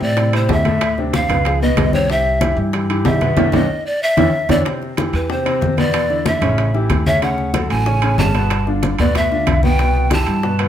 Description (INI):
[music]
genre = Afro-Cuban jazz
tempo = 187 BPM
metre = 4/4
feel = straight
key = C major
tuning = A4 = 439 Hz
[part]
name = breathy mellow pan flute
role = melody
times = 0.0-10.6 s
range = B4 to A5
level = -19 LUFS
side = right 1 dB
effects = plate reverb
[part]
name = clear grand piano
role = accompaniment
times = 0.0-10.7 s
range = A2 to C#5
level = -21 LUFS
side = left 2 dB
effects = none
[part]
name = upright bass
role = bass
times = 0.0-10.7 s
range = G1 to A2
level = -19 LUFS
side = equal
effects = none
[part]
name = congas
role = percussion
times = 0.0-10.7 s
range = none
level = -22 LUFS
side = left 2 dB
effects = none
[part]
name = bongos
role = percussion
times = 0.2-10.7 s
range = none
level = -26 LUFS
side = left 5 dB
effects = none
[part]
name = timbales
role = percussion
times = 0.2-10.7 s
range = none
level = -24 LUFS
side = right 6 dB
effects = none
[sound]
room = moderate studio reverb, RT60 0.8 s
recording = none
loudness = -14 LUFS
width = side -10 dB against mid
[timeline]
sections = 0.0-4.7 A section; 4.7-10.7 A section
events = pan flute solo 0.0-10.7; band accent 3.4-4.7; drum fill 4.0-4.7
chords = 0.0 Am; 0.8 Dm7; 1.5 Db9; 2.1 Cmaj7; 3.4 B7#9; 4.0 E5; 4.7 Cmaj7; 5.9 E5; 6.6 A7; 7.2 Dmaj7; 8.5 G6; 9.8 Cmaj7